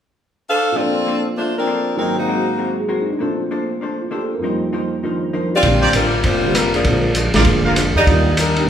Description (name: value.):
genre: jazz, big band swing.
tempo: 197 BPM.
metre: 4/4.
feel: swing 63% on 8ths.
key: Bb major.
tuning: A4 = 441 Hz.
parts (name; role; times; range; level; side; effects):
warm saxophone section; melody; 0.5-2.7, 5.5-8.7 s; F3 to F5; -18 LUFS; left 1 dB; none.
dark upright piano; accompaniment; 0.7-8.7 s; F2 to C5; -22 LUFS; right 1 dB; none.
vintage hollow-body jazz guitar; accompaniment; 0.8-8.6 s; Bb2 to C5; -25 LUFS; left 1 dB; none.
upright bass; bass; 5.6-8.6 s; F1 to E2; -19 LUFS; equal; none.
vintage drum kit; drums; 5.6-8.6 s; hi-hat, kick drum, ride cymbal, rim click, snare drum; -19 LUFS; right 1 dB; none.
bright trumpet section; stabs; 5.8-8.0 s; Eb4 to F5; -22 LUFS; right 1 dB; none.
room: wet large studio reverb, RT60 1.4 s.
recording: band playing live in one room.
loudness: -15 LUFS.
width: side -9 dB against mid.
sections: 0.8-5.6 A section; 5.6-8.7 B section.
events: none.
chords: 0.0 Dm7; 0.8 Bbmaj9; 2.0 Ab9; 3.2 Bbmaj9; 4.4 F7sus4; 5.6 Bb69; 6.8 Bb7; 8.1 Ebmaj7.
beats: 0.14 0.45 | 0.75 1.06 1.36 1.67 | 1.97 2.28 2.58 2.88 | 3.19 3.49 3.80 4.10 | 4.41 4.71 5.02 5.32 | 5.63 5.93 6.24 6.54 | 6.84 7.15 7.45 7.76 | 8.06 8.37 8.67.